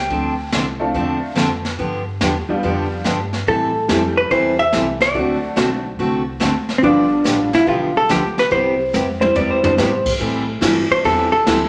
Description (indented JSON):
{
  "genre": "country, western swing",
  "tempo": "143 BPM",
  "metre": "4/4",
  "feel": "swing 66% on 8ths",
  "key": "unclear",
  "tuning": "A4 = 441 Hz",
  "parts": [
    { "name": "clean lap steel guitar", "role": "second line", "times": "0.0-0.6, 9.2-10.1 s", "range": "C5 to G5", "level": "-22 LUFS", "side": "equal", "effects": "none" },
    { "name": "upright bass", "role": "bass", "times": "0.0-11.7 s", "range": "G1 to A2", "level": "-31 LUFS", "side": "equal", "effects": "none" },
    { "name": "picked steel-string acoustic guitar", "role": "accompaniment", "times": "0.1-11.6 s", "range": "C3 to A4", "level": "-24 LUFS", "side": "equal", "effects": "none" },
    { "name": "jazz brush drum kit", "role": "drums", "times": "0.1-11.6 s", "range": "brushed snare drum, crash cymbal, hi-hat, kick drum, ride cymbal, snare drum, toms", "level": "-26 LUFS", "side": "equal", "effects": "none" },
    { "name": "tack piano", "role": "accompaniment", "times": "0.8-11.3 s", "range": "E3 to A4", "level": "-26 LUFS", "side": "equal", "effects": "none" },
    { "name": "hollow-body jazz guitar", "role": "melody", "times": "3.5-11.7 s", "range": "C4 to E5", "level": "-18 LUFS", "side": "equal", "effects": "none" }
  ],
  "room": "wet large studio reverb, RT60 1.1 s",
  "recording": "none",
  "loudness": "-18 LUFS",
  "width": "mono",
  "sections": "0.0-10.2 A section; 10.2-11.7 B section",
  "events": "drum fill 8.9-9.8",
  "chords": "0.1 Dm7; 1.8 G7; 3.5 Am7; 5.1 D7; 6.8 G7; 8.5 Cmaj7; 10.2 Am7"
}